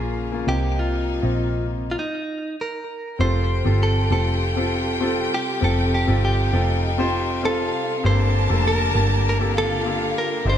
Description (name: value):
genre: piano-driven pop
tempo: 99 BPM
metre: 4/4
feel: straight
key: unclear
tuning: A4 = 440 Hz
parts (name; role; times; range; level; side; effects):
- direct-recorded clean electric guitar; melody; 0.0-10.6 s; Eb4 to C5; -26 LUFS; right 1 dB; spring reverb, ping-pong delay
- warm concert grand piano; accompaniment; 0.0-10.6 s; G2 to A5; -26 LUFS; left 2 dB; none
- bright studio string section; sustained chords; 0.0-10.6 s; C3 to D5; -32 LUFS; left 1 dB; none
- vintage muted picked electric bass; bass; 0.0-10.6 s; F1 to C2; -22 LUFS; equal; none
- warm symphonic violin section; second line; 3.2-10.6 s; F4 to A5; -28 LUFS; left 2 dB; none
room: moderate studio reverb, RT60 0.8 s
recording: band playing live in one room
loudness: -19 LUFS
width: side -10 dB against mid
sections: 0.0-3.2 A section; 3.2-10.6 B section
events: stop 2.0-3.2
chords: 0.5 Cm7; 3.2 Fadd9; 8.0 Gmadd9